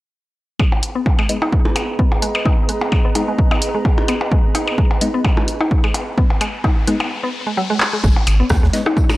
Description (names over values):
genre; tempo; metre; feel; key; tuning
minimal techno; 129 BPM; 4/4; swing 55% on 16ths; G# minor; A4 = 445 Hz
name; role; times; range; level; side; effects
mallet-like synth pluck; riff; 0.6-9.1 s; F#3 to D#4; -23 LUFS; left 1 dB; chorus, phaser, sidechain pumping, analog delay
electronic kick drum; drums; 0.6-9.1 s; none; -16 LUFS; equal; none
percussion blips; percussion; 0.6-9.2 s; none; -24 LUFS; left 1 dB; analog delay
flickering grainy texture; texture; 0.9-9.2 s; B3 to C#5; -31 LUFS; right 1 dB; built-in reverb, sidechain pumping
warbly tape-like pad; texture; 1.3-7.1 s; G#4 to A#5; -27 LUFS; right 2 dB; chorus, built-in reverb, sidechain pumping
punchy analog drum machine; drums; 0.8-8.9 s; handclaps, hi-hat, rim click; -21 LUFS; equal; none
wavetable chord stab; stabs; 1.3-8.8 s; G#3 to D#4; -22 LUFS; left 2 dB; cassette tape, analog delay
riser; sound effects; 6.1-8.0 s; none; -30 LUFS; left 4 dB; none
round analog bass; bass; 8.0-8.7 s; G#1 to D#2; -15 LUFS; equal; sidechain pumping
tambourine and snare drum; drums; 8.0-9.2 s; none; -34 LUFS; equal; high-pass filter on snare, high-pass filter on perc, high-pass filter on room
room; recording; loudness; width
light reverb; dry, gritty hardware recording; -15 LUFS; side -18 dB against mid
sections
0.6-8.0 A section; 8.0-9.2 B section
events
riser 6.1-8.0; break 7.1-8.0; drum fill 7.8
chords
0.6 G#m; 8.0 G#5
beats
| 0.59 1.06 1.52 1.99 | 2.46 2.92 3.39 3.85 | 4.32 4.78 5.25 5.71 | 6.18 6.64 7.11 7.57 | 8.04 8.50 8.97